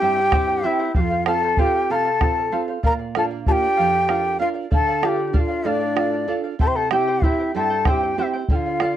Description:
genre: andean folk, Andean ensemble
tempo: 64 BPM (dotted quarters)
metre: 6/8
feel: straight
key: unclear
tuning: A4 = 437 Hz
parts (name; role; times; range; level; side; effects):
- breathy large quena; melody; 0.0-9.0 s; D5 to C6; -22 LUFS; equal; none
- large quena; second line; 0.0-9.0 s; D4 to C5; -25 LUFS; left 6 dB; none
- charango; accompaniment; 0.0-9.0 s; E4 to G5; -27 LUFS; right 2 dB; none
- nylon-string guitar; accompaniment; 0.0-9.0 s; F2 to Bb4; -26 LUFS; right 8 dB; none
- bombo; percussion; 0.3-9.0 s; none; -21 LUFS; right 1 dB; none
room: light reverb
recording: dry, close 1970s-style studio recording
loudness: -18 LUFS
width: side -11 dB against mid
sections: 0.0-9.0 A section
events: none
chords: 0.0 C; 0.9 F; 2.8 Bb; 4.7 Dm; 6.6 C

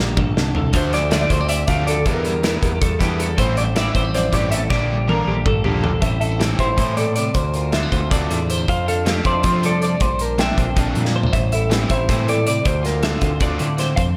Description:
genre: math rock and midwest emo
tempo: 318 BPM (eighths)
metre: 7/8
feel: straight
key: D minor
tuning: A4 = 441 Hz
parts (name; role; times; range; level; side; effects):
- electric guitar through a small old amp; melody; 0.0-14.0 s; A4 to G5; -27 LUFS; equal; vibrato effect
- clean electric guitar; accompaniment; 0.0-14.2 s; D2 to F4; -28 LUFS; equal; subtle chorus
- twelve-string electric guitar; arpeggios; 0.0-14.2 s; G4 to E5; -28 LUFS; equal; lush chorus, slapback echo
- growling picked electric bass; bass; 0.0-14.2 s; A1 to F3; -25 LUFS; equal; overdrive
- loose indie drum kit; drums; 0.2-14.1 s; hi-hat, kick drum, snare drum, toms; -24 LUFS; equal; none
- cranked stack guitar; riff; 0.7-13.7 s; D3 to F4; -30 LUFS; equal; overdrive, slapback echo
room: moderate lush hall reverb, RT60 1.6 s, small room ambience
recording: big arena sound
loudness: -19 LUFS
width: mono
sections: 0.0-6.0 A section; 6.0-14.2 B section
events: drum fill 0.0-0.7, 4.7-6.0, 11.1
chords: 0.0 Bb6; 0.7 Dm7; 2.1 Em7b5; 3.4 Am7; 4.7 Bb6; 6.0 Am7; 7.4 Dm9; 8.7 F69; 10.0 Bb69; 11.3 Am7; 12.7 Dm9

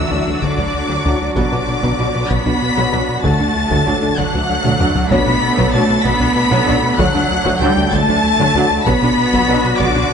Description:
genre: cinematic, hybrid orchestral and electronic film score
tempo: 64 BPM (dotted quarters)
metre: 6/8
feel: straight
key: B minor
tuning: A4 = 438 Hz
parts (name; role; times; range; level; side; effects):
- dark symphonic violin section; melody; 0.0-10.1 s; D6 to B6; -22 LUFS; left 2 dB; none
- warm symphonic violin section; second line; 0.0-10.1 s; D5 to B5; -21 LUFS; left 4 dB; none
- warm symphonic viola section; accompaniment; 0.0-10.1 s; F#3 to F#4; -23 LUFS; right 1 dB; none
- sweeping resonant pad; sustained chords; 0.0-10.1 s; F#3 to D5; -25 LUFS; right 2 dB; chorus
- analog pluck; arpeggios; 0.0-10.1 s; D3 to B4; -24 LUFS; left 4 dB; chorus, digital delay
- rubbery square bass; riff; 0.0-10.0 s; D2 to B2; -24 LUFS; left 2 dB; none
- rich symphonic cello section; bass; 0.0-10.1 s; D3 to B3; -20 LUFS; right 2 dB; none
- felt-muted upright piano; texture; 0.0-10.1 s; B3 to E5; -27 LUFS; left 2 dB; none
- mellow French horn section; sustained chords; 0.1-9.6 s; D4 to F#4; -27 LUFS; left 4 dB; none
- mellow trombone section; sustained chords; 0.1-9.6 s; A2 to F#3; -27 LUFS; right 4 dB; none
- warm symphonic double bass section; bass; 0.1-10.0 s; B1 to D2; -22 LUFS; right 4 dB; none
- taiko ensemble; drums; 0.4-10.1 s; none; -24 LUFS; equal; none
room: moderate scoring stage reverb, RT60 1.7 s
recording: nothing above 10.3 kHz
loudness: -13 LUFS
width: side -7 dB against mid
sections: 0.0-10.1 A section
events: drum fill 4.6-5.1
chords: 0.0 D; 1.4 Bm; 3.2 D; 5.1 Bm; 7.0 D; 8.9 Bm

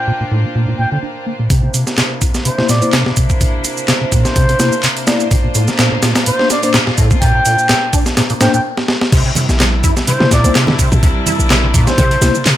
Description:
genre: breakbeat, breaks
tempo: 126 BPM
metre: 4/4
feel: swing 54% on 16ths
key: C mixolydian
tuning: A4 = 440 Hz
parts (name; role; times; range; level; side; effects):
- trumpet with bucket mute; melody; 0.0-12.5 s; C5 to G5; -19 LUFS; equal; small speaker sound, low-pass filter, tape echo
- clear studio string section; sustained chords; 0.0-12.6 s; Bb2 to C5; -23 LUFS; equal; vintage 12-bit sampler grit, sidechain pumping, low-pass filter
- deep acid bass; riff; 0.1-12.5 s; A2 to E4; -17 LUFS; equal; ensemble chorus, tape echo
- breakbeat sampler-style drum kit; drums; 1.5-12.6 s; crash cymbal, hi-hat, kick drum, snare drum; -15 LUFS; equal; studio reverb
- electronic shaker and handclaps; drums; 1.5-12.6 s; none; -20 LUFS; right 1 dB; high-pass filter on perc, studio reverb, high-pass filter on snare, high-pass filter on room
- mellow tine electric piano; stabs; 2.6-12.3 s; Bb3 to D5; -20 LUFS; left 4 dB; medium stereo tremolo, low-pass filter, tape echo
- warm 808-style bass; bass; 9.1-12.5 s; Bb1 to C3; -15 LUFS; equal; none
- congas; percussion; 9.4-11.8 s; none; -24 LUFS; right 4 dB; none
room: light reverb, digital ambience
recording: none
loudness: -11 LUFS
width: side -13 dB against mid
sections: 0.0-1.5 A section; 1.5-9.1 B section; 9.1-12.6 C section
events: build-up 1.5-9.1; filter sweep on acid bass 1.5-9.1; filter sweep on string section 1.5-9.1; filter sweep on muted trumpet 1.5-9.1; break 8.6-9.1; drum fill 8.8-9.1; drop 9.1-12.6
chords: 0.0 Bbadd9; 1.5 C7; 5.3 Bbadd9; 9.1 C7

